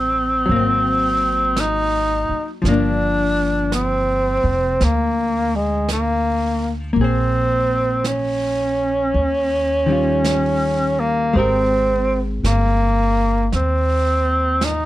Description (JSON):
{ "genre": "jazz ballad", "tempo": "55 BPM", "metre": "4/4", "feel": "swing 66% on 8ths", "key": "unclear", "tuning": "A4 = 439 Hz", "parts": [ { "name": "breathy tenor saxophone", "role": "melody", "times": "0.0-14.9 s", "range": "Ab3 to Eb4", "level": "-18 LUFS", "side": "equal", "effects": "none" }, { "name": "archtop guitar, miked and amplified", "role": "accompaniment", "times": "0.0-14.9 s", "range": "Eb3 to C5", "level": "-23 LUFS", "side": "left 3 dB", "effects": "none" }, { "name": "upright bass", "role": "bass", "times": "0.0-14.9 s", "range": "F1 to Eb2", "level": "-22 LUFS", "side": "equal", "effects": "none" }, { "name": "jazz brush drum kit", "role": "drums", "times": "0.5-14.9 s", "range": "brushed snare drum, hi-hat, snare drum", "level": "-31 LUFS", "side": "right 3 dB", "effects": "none" } ], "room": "light reverb", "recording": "dark, warm production", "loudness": "-16 LUFS", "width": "side -15 dB against mid", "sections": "0.0-14.9 A section", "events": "none", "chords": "0.5 Ab9; 2.6 Gm7; 7.0 Bbm9; 9.1 Eb9; 11.3 Abmaj9" }